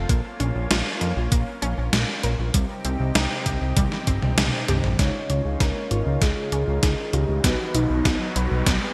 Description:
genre	synthwave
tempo	98 BPM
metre	4/4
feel	straight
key	unclear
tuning	A4 = 443 Hz
part	lush unison pad	sustained chords	0.0-8.9 s	C3 to G4	-35 LUFS	equal	chorus, sidechain pumping
part	analog pluck	arpeggios	0.0-8.9 s	G3 to B4	-34 LUFS	equal	chorus, digital delay
part	fat analog bass	bass	0.0-8.8 s	G1 to F2	-27 LUFS	equal	none
part	electronic kick drum	drums	0.1-8.8 s	none	-26 LUFS	equal	none
part	gated 80s digital drum machine	drums	0.1-8.8 s	hi-hat, snare drum, toms	-27 LUFS	equal	gated reverb, gated reverb snare, high-pass filter on hats, high-pass filter on snare, high-pass filter on toms, high-pass filter on room
part	soft octave-layered synth lead	melody	5.0-8.4 s	D#4 to Db5	-32 LUFS	equal	chorus, tremolo, delay
part	analog synth brass	stabs	5.0-8.9 s	F#3 to Db5	-35 LUFS	equal	chorus, digital delay
part	riser	sound effects	7.0-8.9 s	none	-36 LUFS	equal	none
room	moderate lush hall reverb, RT60 2.2 s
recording	bright 1980s-style digital production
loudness	-23 LUFS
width	mono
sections	0.0-5.0 A section; 5.0-8.9 B section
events	drum fill 3.8-5.0, 5.0-8.9; riser 7.0-8.9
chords	0.1 Bbm; 2.5 Cm; 5.0 Dbadd9; 7.4 B

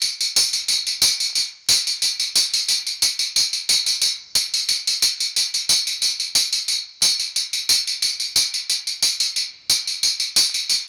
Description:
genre	trip hop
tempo	90 BPM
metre	4/4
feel	swing 53% on 16ths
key	none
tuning	none
part	tambourine	percussion	0.0-10.8 s	none	-18 LUFS	equal	none
room	light reverb, small room ambience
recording	dark, warm production, vinyl crackle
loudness	-18 LUFS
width	mono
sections	0.0-10.9 A section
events	none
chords	none

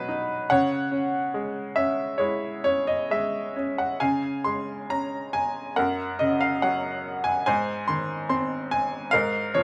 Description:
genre	classical, lyrical solo piano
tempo	64-73 BPM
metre	4/4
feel	rubato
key	C# minor, Db major from 4.0 s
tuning	A4 = 438 Hz
part	bright upright piano	solo	0.0-9.6 s	Gb2 to C6	-26 LUFS	equal	none
room	light reverb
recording	none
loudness	-26 LUFS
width	mono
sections	0.0-4.0 A section; 4.0-9.6 B section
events	none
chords	0.5 C#m; 4.0 Db; 5.8 Gb; 7.5 Ab

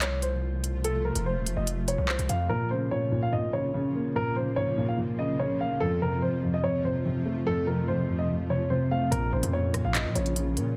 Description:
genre	hip hop, drill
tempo	145 BPM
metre	4/4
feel	half-time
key	Bb harmonic minor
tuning	A4 = 439 Hz
part	dark concert grand piano	melody	0.0-10.7 s	A4 to F5	-33 LUFS	equal	low-pass filter
part	granular cloud pad	sustained chords	0.0-10.8 s	C3 to F4	-38 LUFS	equal	built-in reverb
part	distorted 808-style bass	bass	0.0-2.5, 9.1-10.8 s	Eb1 to Bb2	-32 LUFS	equal	distortion
part	drill drum kit	drums	0.0-2.4, 9.1-10.7 s	handclaps, hi-hat, rim click	-33 LUFS	equal	none
part	dark concert grand piano	accompaniment	2.5-10.8 s	F2 to Bb3	-30 LUFS	equal	low-pass filter
room	light reverb, small room ambience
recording	none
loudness	-28 LUFS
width	mono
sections	0.0-2.5 A section; 2.5-10.8 B section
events	none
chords	0.0 F; 2.5 Bbm; 5.8 F; 9.1 Bbm

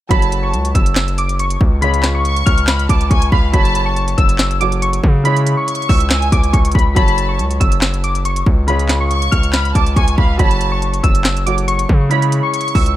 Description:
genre	hip hop, trap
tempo	140 BPM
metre	4/4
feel	half-time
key	F# minor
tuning	A4 = 440 Hz
part	warbly lo-fi synth keys	melody	0.1-13.0 s	B5 to E#6	-20 LUFS	equal	chorus, low-pass filter
part	warm studio violin section	second line	0.1-12.9 s	E#5 to C#6	-24 LUFS	equal	digital delay
part	bright concert grand piano	accompaniment	0.1-13.0 s	C#3 to C#5	-24 LUFS	right 1 dB	low-pass filter
part	distorted 808-style bass	bass	0.1-13.0 s	F#1 to C#3	-17 LUFS	equal	distortion
part	trap drum kit	drums	0.1-13.0 s	handclaps, hi-hat, kick drum, snare drum	-15 LUFS	equal	none
room	digital ambience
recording	none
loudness	-12 LUFS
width	side -14 dB against mid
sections	0.1-13.0 A section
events	none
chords	0.1 F#m; 1.8 C#; 3.5 F#m; 5.2 C#m; 7.0 F#m; 8.7 C#; 10.4 F#m; 12.1 C#m

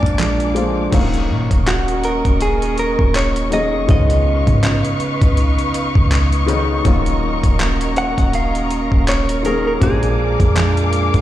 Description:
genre	contemporary R&B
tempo	81 BPM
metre	4/4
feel	swing 58% on 16ths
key	Eb minor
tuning	A4 = 440 Hz
part	direct-recorded clean electric guitar	melody	0.0-11.2 s	D4 to Gb5	-21 LUFS	right 1 dB	digital delay
part	warm grand piano	accompaniment	0.0-11.2 s	Eb3 to F5	-24 LUFS	left 5 dB	none
part	muted studio string section	sustained chords	0.0-11.2 s	Gb4 to D6	-24 LUFS	left 2 dB	none
part	picked steel-string acoustic guitar	arpeggios	0.0-11.2 s	Bb2 to Gb4	-23 LUFS	right 4 dB	none
part	clean 808-style bass	bass	0.0-11.2 s	Eb1 to Bb2	-19 LUFS	equal	none
part	dusty soul sampler-style drum kit	drums	0.0-11.2 s	crash cymbal, handclaps, hi-hat, kick drum	-18 LUFS	equal	overdrive
room	small room ambience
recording	played on a big sound system in a bare room, large studio reverb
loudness	-14 LUFS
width	side -13 dB against mid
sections	0.9-11.2 A section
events	none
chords	0.0 Bb7; 0.9 Ebm7; 3.9 Db9; 6.9 Ebm7; 9.8 Bb7

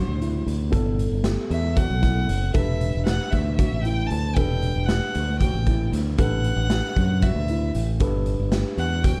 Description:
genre	progressive instrumental, band music in an uneven meter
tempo	231 BPM (eighths)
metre	7/8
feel	straight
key	E minor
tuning	A4 = 442 Hz
part	bright violin	melody	0.0-9.2 s	C5+20c to A5	-33 LUFS	equal	none
part	tine electric piano	accompaniment	0.0-9.2 s	A3 to B4	-35 LUFS	equal	none
part	dark concert grand piano	arpeggios	0.0-9.2 s	E4 to A4	-35 LUFS	equal	none
part	modern bright fingered electric bass	bass	0.0-9.2 s	E1 to F#2	-26 LUFS	equal	none
part	raw garage drum kit	drums	0.2-9.2 s	hi-hat, kick drum, snare drum	-27 LUFS	equal	none
room	light reverb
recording	dark, warm production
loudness	-23 LUFS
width	mono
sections	0.0-9.2 A section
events	none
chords	0.0 Am7; 0.7 G; 2.5 Emadd9; 6.2 A5; 8.0 G

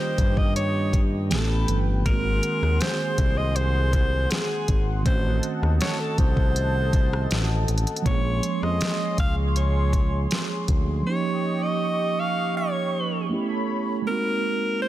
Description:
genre	contemporary R&B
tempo	80 BPM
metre	4/4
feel	straight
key	unclear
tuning	A4 = 441 Hz
part	warm alto saxophone	melody	0.0-14.9 s	Ab4 to F5	-28 LUFS	equal	digital delay
part	mellow tine electric piano	accompaniment	0.0-14.9 s	Eb3 to Ab4	-28 LUFS	right 4 dB	slow stereo tremolo
part	warm analog pad	sustained chords	0.0-14.1 s	A3 to Db6	-32 LUFS	left 1 dB	chorus
part	smooth synth bass	bass	0.2-11.0 s	G1 to G2	-24 LUFS	equal	none
part	smooth R&B drum kit	drums	0.2-10.9 s	hi-hat, kick drum, rim click, snare drum	-24 LUFS	equal	none
room	digital ambience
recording	dense, heavily limited modern master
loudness	-21 LUFS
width	side -14 dB against mid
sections	0.0-14.9 A section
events	none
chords	0.0 Eb7; 1.3 A9; 2.1 Ab7; 5.1 Adim7; 8.1 Bbm9; 11.1 Eb7; 13.3 A9; 14.1 Ab7

